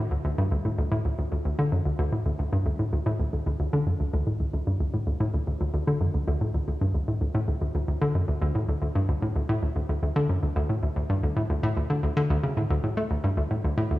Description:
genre	ambient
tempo	112 BPM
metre	4/4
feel	straight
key	D major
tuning	A4 = 440 Hz
part	hollow square pluck	solo	0.0-14.0 s	D2 to A3	-24 LUFS	equal	chorus, analog delay
room	wet concert hall reverb, RT60 2.3 s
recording	cassette tape, studio reverb, faint mains hum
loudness	-24 LUFS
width	side -17 dB against mid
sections	0.0-4.1 A section; 4.1-14.0 B section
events	none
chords	none

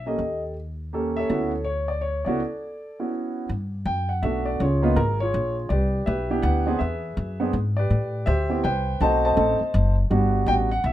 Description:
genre	jazz piano trio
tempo	164 BPM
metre	3/4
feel	swing 63% on 8ths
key	D major, G major from 3.5 s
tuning	A4 = 440 Hz
part	warm concert grand piano	melody	0.0-10.9 s	G3 to A5	-24 LUFS	right 1 dB	none
part	upright bass	bass	0.0-10.9 s	F#1 to A2	-24 LUFS	equal	none
room	light reverb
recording	minimal, uncompressed stereo recording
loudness	-21 LUFS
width	side -13 dB against mid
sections	0.0-3.5 A section; 3.5-10.9 B section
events	break 2.4-3.5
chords	0.2 Eb7#11; 1.3 Dmaj13; 3.5 Gmaj7; 4.6 C#13; 5.7 Cmaj7; 6.8 E7; 7.9 Am9; 9.0 B7b9; 10.1 Gmaj9

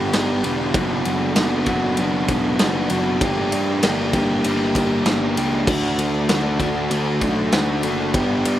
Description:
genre	indie rock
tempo	97 BPM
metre	4/4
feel	straight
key	D major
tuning	A4 = 440 Hz
part	phased string machine	sustained chords	0.0-8.6 s	G4 to B5	-33 LUFS	equal	none
part	fuzz guitar	riff	0.0-8.6 s	F#3 to G4	-20 LUFS	equal	distortion
part	fuzz picked electric bass	bass	0.0-8.6 s	E1 to G2	-26 LUFS	equal	overdrive
part	big rock drum kit	drums	0.1-8.6 s	crash cymbal, kick drum, ride cymbal, snare drum	-23 LUFS	equal	none
room	little or no reverb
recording	none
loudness	-17 LUFS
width	side -12 dB against mid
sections	0.0-8.6 A section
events	none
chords	0.0 Gmaj7; 0.8 Bm7/F#; 3.2 Gm6; 5.7 D6

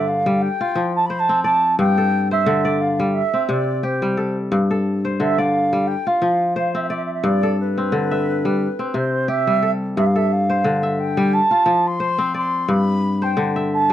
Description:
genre	west african traditional, West African string and xylophone music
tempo	88 BPM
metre	4/4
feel	swing 55% on 16ths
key	G mixolydian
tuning	A4 = 439 Hz
part	baroque flute	melody	0.0-13.9 s	B4 to C6	-20 LUFS	right 2 dB	none
part	kora	arpeggios	0.0-13.9 s	G2 to E5	-19 LUFS	left 2 dB	none
room	small room ambience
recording	dry, close 1970s-style studio recording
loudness	-17 LUFS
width	side -12 dB against mid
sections	0.0-13.9 A section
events	none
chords	0.4 F5; 1.8 G5; 3.1 C5; 4.5 G5; 5.9 F5; 7.2 G; 8.6 C5; 10.0 G5; 11.3 F5; 12.7 G5

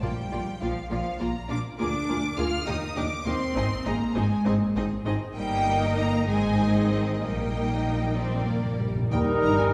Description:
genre	quick classical-period movement for symphony orchestra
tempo	63-69 BPM (dotted quarters)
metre	6/8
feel	rubato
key	Eb major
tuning	A4 = 440 Hz
part	rich studio violin section	melody	0.0-9.6 s	Eb5 to F6	-35 LUFS	equal	none
part	rich studio violin section	second line	0.0-8.9 s	F4 to Eb5	-37 LUFS	equal	none
part	rich studio viola section	accompaniment	0.0-9.7 s	G3 to Bb4	-34 LUFS	equal	none
part	rich studio cello section	bass	0.0-9.7 s	Eb2 to F4	-32 LUFS	equal	none
part	rich studio double bass section	bass	0.0-9.7 s	G1 to Eb2	-32 LUFS	equal	none
part	timpani	percussion	0.0-0.9, 8.2-9.7 s	Bb2 to Eb3	-34 LUFS	equal	none
part	clear clarinet	second line	9.1-9.7 s	Eb4	-36 LUFS	equal	none
part	clear oboe	second line	9.1-9.7 s	Bb4	-31 LUFS	equal	none
part	mellow hollow concert flute	second line	9.1-9.7 s	Eb6	-35 LUFS	equal	none
part	mellow bassoon	accompaniment	9.1-9.7 s	G3	-31 LUFS	equal	none
part	warm French horn section	sustained chords	9.1-9.7 s	G3 to Eb4	-35 LUFS	equal	none
part	dark trumpet	stabs	9.1-9.7 s	Bb4	-32 LUFS	equal	none
room	wet scoring stage reverb, RT60 1.7 s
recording	heard from further back in the room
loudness	-26 LUFS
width	mono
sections	0.0-9.1 A section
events	timpani fill 8.2-9.1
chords	0.0 Bb; 1.8 Bb7/D; 2.7 Eb; 3.6 Ab; 5.4 Eb/G; 6.3 Ab; 7.2 Eb/Bb; 8.2 Bb; 9.1 Eb

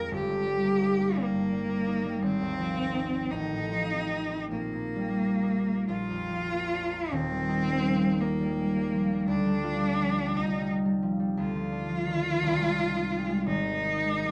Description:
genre	classical, romantic duo for cello and harp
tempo	41-60 BPM (dotted quarters)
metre	6/8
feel	rubato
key	Eb major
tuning	A4 = 439 Hz
part	rich cello	melody	0.0-14.3 s	Bb3 to Bb4	-32 LUFS	equal	none
part	concert harp	accompaniment	0.0-14.3 s	Eb1 to Ab4	-30 LUFS	equal	none
room	light reverb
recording	dark, warm production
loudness	-28 LUFS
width	mono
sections	0.0-7.1 A section; 7.1-14.3 B section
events	none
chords	0.1 Eb/G; 2.2 Fm7/Ab; 3.3 F7/A; 4.5 Eb/Bb; 5.9 Bb; 7.1 Eb; 9.3 G5/D; 10.3 Cm; 11.4 Dm; 12.4 Ab/C; 13.5 Ab5

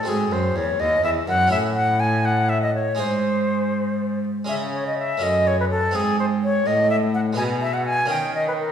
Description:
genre	classical, baroque-style sonata movement with continuo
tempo	82 BPM (dotted quarters)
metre	6/8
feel	straight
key	unclear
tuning	A4 = 440 Hz
part	silver concert flute	melody	0.0-8.7 s	G#4 to G#5	-21 LUFS	left 1 dB	none
part	harpsichord	accompaniment	0.0-8.7 s	D#2 to G#4	-30 LUFS	equal	none
part	warm cello	bass	0.1-8.7 s	D#2 to D#3	-24 LUFS	right 1 dB	none
room	wet recital hall reverb, RT60 1.3 s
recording	heard from further back in the room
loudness	-19 LUFS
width	side -8 dB against mid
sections	0.0-8.7 A section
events	none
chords	0.1 G#7; 1.5 A; 3.0 G#; 4.5 C#5; 5.2 F#m; 5.9 G#; 7.4 G#m/B; 8.1 D#5

